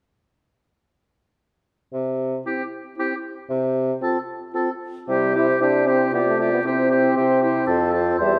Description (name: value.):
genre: quick classical-period movement for wind quintet.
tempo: 116 BPM.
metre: 3/4.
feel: straight.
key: C major.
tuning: A4 = 440 Hz.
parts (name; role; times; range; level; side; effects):
mellow bassoon; bass; 1.9-8.4 s; E2 to C3; -26 LUFS; equal; none.
warm oboe; second line; 2.5-8.4 s; G4 to C5; -28 LUFS; equal; none.
clear French horn; accompaniment; 2.5-8.3 s; G3 to E4; -26 LUFS; equal; none.
dark clarinet; accompaniment; 2.5-8.4 s; E4 to G4; -30 LUFS; equal; none.
silver concert flute; melody; 5.1-8.4 s; C5 to E5; -28 LUFS; equal; none.
room: wet scoring stage reverb, RT60 1.6 s.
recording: none.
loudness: -21 LUFS.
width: mono.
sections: 1.9-5.1 A section; 5.1-8.4 B section.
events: none.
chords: 1.9 C; 3.5 F/C; 5.1 C; 6.1 G5/C; 6.7 C; 7.7 F.